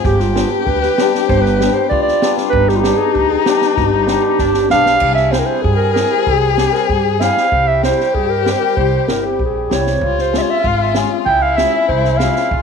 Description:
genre	klezmer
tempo	96 BPM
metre	2/4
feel	straight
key	G phrygian dominant, C phrygian dominant from 5.0 s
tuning	A4 = 440 Hz
part	rich violin	second line	0.0-12.6 s	D4 to Ab4	-19 LUFS	left 12 dB	none
part	hammered dulcimer	accompaniment	0.0-12.6 s	G3 to G4	-20 LUFS	left 14 dB	none
part	upright bass	bass	0.0-12.6 s	G1 to G2	-20 LUFS	right 2 dB	none
part	open jazz drum kit	drums	0.0-12.6 s	crash cymbal, kick drum, snare drum	-22 LUFS	right 3 dB	none
part	mellow clarinet	melody	0.1-12.6 s	F4 to G5	-16 LUFS	right 5 dB	none
room	light reverb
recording	1960s-style stereo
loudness	-12 LUFS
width	side -6 dB against mid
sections	0.0-5.0 A section; 5.0-12.6 B section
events	drum fill 4.4-5.0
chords	0.1 G; 5.0 C; 10.0 Db

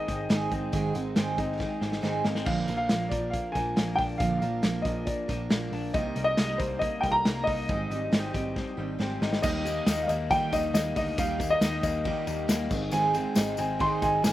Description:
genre	jangly indie pop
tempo	138 BPM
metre	4/4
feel	straight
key	Eb major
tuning	A4 = 440 Hz
part	dark upright piano	melody	0.0-14.3 s	C5 to C6	-29 LUFS	equal	none
part	picked steel-string acoustic guitar	accompaniment	0.0-14.3 s	Ab2 to Bb4	-32 LUFS	right 5 dB	none
part	electric guitar through a small old amp	arpeggios	0.0-14.3 s	Ab2 to Eb4	-34 LUFS	left 5 dB	slapback echo
part	vintage muted picked electric bass	bass	0.1-14.3 s	Ab1 to Eb2	-36 LUFS	equal	none
part	raw garage drum kit	drums	0.1-14.3 s	crash cymbal, hi-hat, kick drum, ride cymbal, snare drum	-30 LUFS	equal	none
part	tambourine	percussion	9.4-14.3 s	none	-42 LUFS	left 6 dB	none
room	little or no reverb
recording	recorded outdoors, with no room sound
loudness	-25 LUFS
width	side -14 dB against mid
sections	0.0-2.5 A section; 2.5-9.4 B section; 9.4-14.3 C section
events	drum fill 1.6-2.5, 8.6-9.4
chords	0.0 Ab; 2.5 Bb; 5.9 Cm7; 7.7 Abmaj7; 9.4 Eb; 12.7 Ab

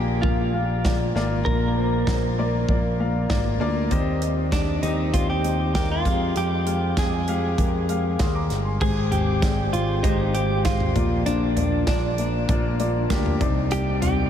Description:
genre	piano-driven pop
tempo	98 BPM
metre	4/4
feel	straight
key	unclear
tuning	A4 = 440 Hz
part	direct-recorded clean electric guitar	melody	0.0-14.3 s	D4 to Bb4	-28 LUFS	equal	lush chorus, ping-pong delay
part	warm concert grand piano	accompaniment	0.0-14.3 s	Ab2 to Eb6	-26 LUFS	left 3 dB	none
part	overdriven picked electric bass	bass	0.0-14.3 s	G1 to F2	-25 LUFS	equal	none
part	modern studio drum kit	drums	0.2-14.2 s	crash cymbal, hi-hat, kick drum, snare drum, toms	-26 LUFS	right 1 dB	none
part	tonewheel organ	sustained chords	8.8-14.3 s	C3 to G5	-34 LUFS	right 1 dB	none
room	moderate huge ambient reverb, RT60 8.1 s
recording	dreamy mix soaked in reverb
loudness	-20 LUFS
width	side -9 dB against mid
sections	0.0-8.8 A section; 8.8-14.3 B section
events	none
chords	0.0 Bb; 3.9 Eb6; 6.1 Fmadd9; 8.8 Abmaj7; 11.0 Bb; 13.4 Cmadd9

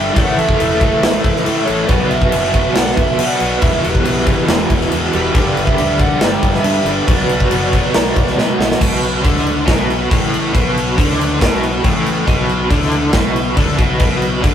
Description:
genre	hard rock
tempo	139 BPM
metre	4/4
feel	straight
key	B minor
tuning	A4 = 439 Hz
part	lead guitar through a small cranked amp	melody	0.0-8.3 s	B4 to G5	-21 LUFS	right 3 dB	overdrive
part	lightly driven lead guitar	second line	0.0-8.3 s	G4 to E5	-25 LUFS	right 2 dB	none
part	overdriven tonewheel organ	sustained chords	0.0-14.5 s	E3 to F#5	-29 LUFS	equal	none
part	distorted electric guitar	riff	0.0-14.5 s	E2 to B3	-21 LUFS	left 4 dB	distortion
part	heavy high-gain guitar	riff	0.0-14.5 s	E2 to B3	-23 LUFS	right 4 dB	distortion
part	overdriven electric guitar	riff	0.0-14.5 s	E2 to B3	-21 LUFS	right 1 dB	tremolo
part	growling fingered electric bass	bass	0.0-14.5 s	E1 to B2	-23 LUFS	equal	overdrive
part	big rock drum kit	drums	0.2-14.5 s	crash cymbal, kick drum, snare drum	-16 LUFS	equal	none
room	light reverb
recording	rough rehearsal-room recording, tube saturation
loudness	-12 LUFS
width	side -9 dB against mid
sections	0.0-8.8 A section; 8.8-14.5 B section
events	drum fill 8.4-8.8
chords	0.2 A5; 1.9 Bm; 3.6 Em; 5.3 G5; 7.1 Bm

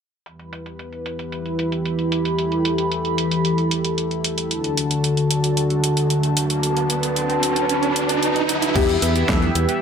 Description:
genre	synthwave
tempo	113 BPM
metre	4/4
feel	straight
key	E minor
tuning	A4 = 440 Hz
part	chorused pulse-width pad	sustained chords	0.3-9.8 s	D3 to E6	-20 LUFS	equal	sidechain pumping
part	pop drum kit	drums	0.3-9.8 s	crash cymbal, hi-hat, snare drum	-25 LUFS	right 1 dB	overdrive, low-pass filter on hats, low-pass filter on cymbals, low-pass filter on snare, low-pass filter on room, gated reverb
part	riser	sound effects	5.6-8.8 s	none	-25 LUFS	right 2 dB	none
part	soft octave-layered synth lead	melody	8.8-9.8 s	G4 to B4	-23 LUFS	left 4 dB	chorus, phaser, digital delay
part	chorused polysynth	stabs	8.8-9.8 s	E3 to E5	-25 LUFS	right 3 dB	phaser
part	picked electric bass	bass	8.8-9.7 s	E2	-21 LUFS	left 1 dB	sidechain pumping
part	electronic kick drum	drums	8.8-9.4 s	none	-22 LUFS	equal	overdrive
room	moderate lush hall reverb, RT60 2.1 s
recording	none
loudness	-18 LUFS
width	side -7 dB against mid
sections	0.3-8.8 A section; 8.8-9.8 B section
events	filter sweep on analog synth pad 0.3-8.8; riser 5.6-8.8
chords	0.3 Em; 4.5 D; 8.8 Em

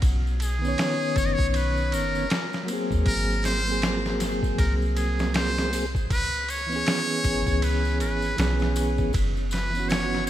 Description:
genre	trip hop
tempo	79 BPM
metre	4/4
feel	swing 59% on 16ths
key	C# dorian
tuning	A4 = 439 Hz
part	soft 808-style bass	bass	0.0-10.3 s	F#1 to D#2	-27 LUFS	equal	none
part	trip hop sampler-style drum kit	drums	0.0-10.3 s	hi-hat, kick drum, ride cymbal, snare drum	-29 LUFS	equal	studio reverb
part	tambourine	percussion	0.0-10.3 s	none	-42 LUFS	left 4 dB	none
part	trumpet with metal mute	melody	0.4-10.3 s	G#4 to D#5	-29 LUFS	equal	tape echo
part	mellow tonewheel organ	accompaniment	0.6-10.3 s	D#3 to C#5	-28 LUFS	equal	slow rotary speaker, tremolo, tape echo
room	light reverb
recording	bright 1980s-style digital production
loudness	-22 LUFS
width	side -12 dB against mid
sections	0.0-10.3 A section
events	none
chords	0.0 Bmaj9; 3.1 G#9; 6.1 C#m7; 9.1 F#7sus4

